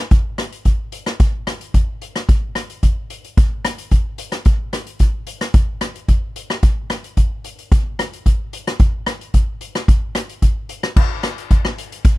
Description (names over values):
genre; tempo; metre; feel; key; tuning
calypso; 111 BPM; 4/4; straight; none; none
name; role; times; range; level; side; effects
street-band drum kit; drums; 0.1-12.2 s; crash cymbal, hi-hat, kick drum, rim click; -15 LUFS; equal; none
room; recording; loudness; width
little or no reverb; dry, close 1970s-style studio recording; -16 LUFS; side -19 dB against mid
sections
0.0-11.0 A section; 11.0-12.2 B section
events
none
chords
none